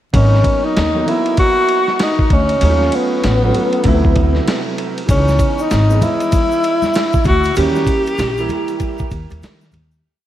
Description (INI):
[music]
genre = hip hop, jazz-hop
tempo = 97 BPM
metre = 4/4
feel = swing 62% on 16ths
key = G# minor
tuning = A4 = 444 Hz
[part]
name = breathy tenor saxophone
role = melody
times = 0.1-9.4 s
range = B3 to G4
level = -16 LUFS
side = left 1 dB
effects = ping-pong delay
[part]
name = warm concert grand piano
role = accompaniment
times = 0.1-9.6 s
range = C3 to D#5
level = -21 LUFS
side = right 4 dB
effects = lush chorus
[part]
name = upright bass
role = bass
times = 0.1-10.0 s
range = G#1 to D#3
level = -16 LUFS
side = equal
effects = none
[part]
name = dusty soul sampler-style drum kit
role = drums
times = 0.1-9.9 s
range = hi-hat, kick drum, ride cymbal, snare drum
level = -19 LUFS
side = equal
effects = none
[part]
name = tube shaker and congas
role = percussion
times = 5.1-10.0 s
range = none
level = -28 LUFS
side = left 3 dB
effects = none
[sound]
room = moderate lush hall reverb, RT60 1.9 s, small room ambience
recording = dreamy mix soaked in reverb, vinyl crackle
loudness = -12 LUFS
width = side -12 dB against mid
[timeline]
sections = 0.1-10.0 head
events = fade-out 7.6-10.0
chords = 0.1 G#m9 (rootless); 2.6 D#m7b5; 3.9 D9; 5.1 C#m7; 7.6 D#7b9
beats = | 0.14 0.76 1.38 2.00 | 2.61 3.23 3.85 4.47 | 5.09 5.71 6.33 6.94 | 7.56 8.18 8.80 9.42